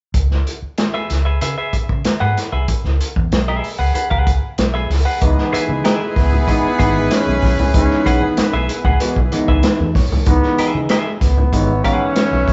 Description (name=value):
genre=funk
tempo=95 BPM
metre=4/4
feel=straight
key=C# minor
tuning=A4 = 440 Hz
part: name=vintage muted fingered electric bass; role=bass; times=0.1-12.5 s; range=G#1 to C#3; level=-21 LUFS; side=equal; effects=none
part: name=vintage drum kit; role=drums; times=0.1-12.5 s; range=hi-hat, kick drum, snare drum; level=-21 LUFS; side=equal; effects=none
part: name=clean electric guitar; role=accompaniment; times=0.9-12.1 s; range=G#4 to F#5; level=-25 LUFS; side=equal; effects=none
part: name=warm trombone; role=melody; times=5.2-12.5 s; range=G#3 to C#4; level=-23 LUFS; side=equal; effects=none
part: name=clear horn section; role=second line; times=5.2-12.5 s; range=E4 to E5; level=-26 LUFS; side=equal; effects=none
part: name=overdriven clav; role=stabs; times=5.2-12.4 s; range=D#3 to C#5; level=-24 LUFS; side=equal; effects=phaser
part: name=congas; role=percussion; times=5.7-12.5 s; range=none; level=-30 LUFS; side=equal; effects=none
room=moderate large studio reverb, RT60 1.2 s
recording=band playing live in one room, nothing above 7.8 kHz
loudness=-17 LUFS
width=mono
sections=0.1-5.2 A section; 5.2-12.5 B section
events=clav fill 9.3-10.3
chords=0.1 C#m7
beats=| 0.14 0.78 1.41 2.05 | 2.68 3.32 3.95 4.58 | 5.22 5.85 6.48 7.11 | 7.74 8.38 9.01 9.64 | 10.27 10.90 11.53 12.16